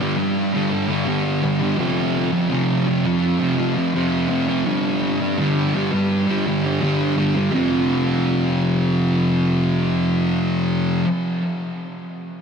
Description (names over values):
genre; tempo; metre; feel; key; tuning
rock; 84 BPM; 4/4; straight; unclear; A4 = 440 Hz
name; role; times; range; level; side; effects
thick fuzz guitar; solo; 0.0-11.1 s; F2 to G3; -18 LUFS; equal; distortion, wide subtle chorus, diffuse ambient delay
room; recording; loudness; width
wet huge ambient reverb, RT60 6.9 s; dreamy mix soaked in reverb, nothing above 10.7 kHz; -18 LUFS; side -6 dB against mid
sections
0.0-7.5 A section; 7.5-10.4 B section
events
none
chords
0.0 G5; 1.8 F5; 4.7 G5; 7.5 F5